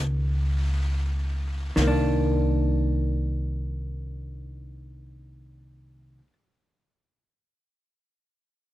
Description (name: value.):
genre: jazz ballad.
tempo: free time.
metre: none.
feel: none.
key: C minor.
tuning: A4 = 439 Hz.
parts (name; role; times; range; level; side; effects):
vintage hollow-body jazz guitar; accompaniment; 0.0-6.3 s; Eb3 to D4; -27 LUFS; equal; none.
upright bass; bass; 0.0-6.2 s; C2 to Db2; -26 LUFS; equal; none.
jazz brush drum kit; drums; 1.8-2.4 s; hi-hat, snare drum; -37 LUFS; left 1 dB; none.
room: little or no reverb.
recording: dry, close 1970s-style studio recording.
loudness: -23 LUFS.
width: side -15 dB against mid.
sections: 0.0-1.8 A section; 1.8-8.7 B section.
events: slowing down 0.0-1.8.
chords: 0.0 Cm7 (rootless); 1.8 Cm9.